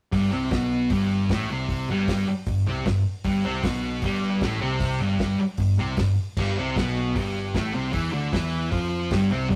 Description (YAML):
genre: garage rock duo or trio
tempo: 153 BPM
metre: 4/4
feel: straight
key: G mixolydian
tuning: A4 = 439 Hz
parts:
  - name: fuzz guitar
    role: riff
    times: 0.1-9.6 s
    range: G2 to F4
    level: -26 LUFS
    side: equal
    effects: distortion
  - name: modern bright picked electric bass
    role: bass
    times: 0.1-9.6 s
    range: G1 to F2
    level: -34 LUFS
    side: equal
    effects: none
  - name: cloth-damped thuddy drum kit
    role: drums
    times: 0.1-9.6 s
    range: crash cymbal, hi-hat, kick drum, snare drum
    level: -32 LUFS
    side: equal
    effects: none
room: moderate stone room reverb, RT60 0.9 s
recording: rough rehearsal-room recording, tube saturation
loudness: -25 LUFS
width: mono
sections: 0.1-9.6 A section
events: none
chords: 0.1 G